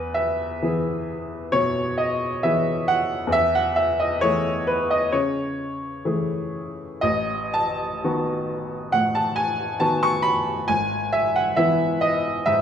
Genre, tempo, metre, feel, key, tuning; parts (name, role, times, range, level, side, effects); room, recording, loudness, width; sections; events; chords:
classical, romantic character piece for solo piano; 66 BPM; 4/4; rubato; E major; A4 = 439 Hz
clear upright piano; solo; 0.0-12.6 s; G#1 to C#6; -20 LUFS; equal
moderate recital hall reverb, RT60 1.7 s; dark, warm production; -20 LUFS; side -8 dB against mid
0.0-12.6 A section
0.0 E; 3.3 Amaj7/E; 7.0 B7/A; 10.7 E/G#